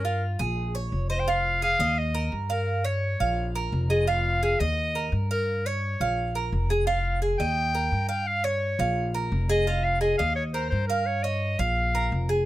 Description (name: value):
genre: latin, Cuban son and guajira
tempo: 171 BPM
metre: 4/4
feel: straight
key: F minor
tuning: A4 = 440 Hz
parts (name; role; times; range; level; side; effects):
- bright clarinet; melody; 0.0-12.3 s; Bb4 to G5; -28 LUFS; equal; none
- Cuban tres; arpeggios; 0.0-12.5 s; F4 to F5; -28 LUFS; right 2 dB; none
- upright bass; bass; 0.0-12.5 s; F1 to G2; -27 LUFS; equal; none
room: little or no reverb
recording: close, detailed microphones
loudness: -23 LUFS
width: side -15 dB against mid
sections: 0.0-1.3 A section; 1.3-12.5 B section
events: clarinet solo 0.0-1.3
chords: 0.0 Gm7; 0.6 Bbm7; 1.3 Fm; 2.0 Eb; 2.7 Gm7b5; 3.4 Bb5; 4.1 Fm; 4.8 Eb; 5.5 Gm7b5; 6.2 Bb5; 6.9 Fm; 7.6 Eb; 8.3 Gm7b5; 9.0 Bb5; 9.7 Fm; 10.4 Eb; 11.1 Gm7b5; 11.8 Bb5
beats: 0.22 0.57 0.92 | 1.27 1.62 1.97 2.32 | 2.67 3.02 3.37 3.72 | 4.07 4.42 4.77 5.12 | 5.47 5.82 6.17 6.52 | 6.87 7.22 7.57 7.92 | 8.27 8.62 8.97 9.32 | 9.67 10.02 10.37 10.72 | 11.07 11.43 11.78 12.13